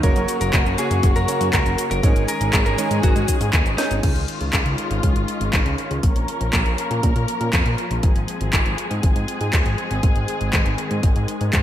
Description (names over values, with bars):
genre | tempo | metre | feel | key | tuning
italo disco | 120 BPM | 4/4 | straight | Db major | A4 = 440 Hz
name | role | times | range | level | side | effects
lightly driven lead guitar | melody | 0.0-4.0 s | Eb4 to Bb4 | -26 LUFS | equal | ping-pong delay
muted studio string section | sustained chords | 0.0-11.6 s | Db3 to Bb4 | -26 LUFS | left 2 dB | none
clear electric grand piano | stabs | 0.0-4.0 s | Ab3 to Db5 | -28 LUFS | right 5 dB | ping-pong delay
fat analog bass | bass | 0.0-11.6 s | Gb1 to Bb2 | -23 LUFS | equal | none
electronic kick drum | drums | 0.0-11.6 s | none | -19 LUFS | equal | none
house drum kit | drums | 0.0-11.6 s | cabasa, crash cymbal, handclaps, hi-hat, snare drum | -25 LUFS | equal | gated reverb
room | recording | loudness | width
moderate plate reverb, RT60 1.9 s | bright 1980s-style digital production | -17 LUFS | side -11 dB against mid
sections
0.0-4.0 A section; 4.0-11.6 B section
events
drum fill 3.8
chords
0.0 Gb; 2.0 Absus4; 4.0 Dbadd9; 6.0 Bbm; 8.0 Fm/Ab; 10.0 Ab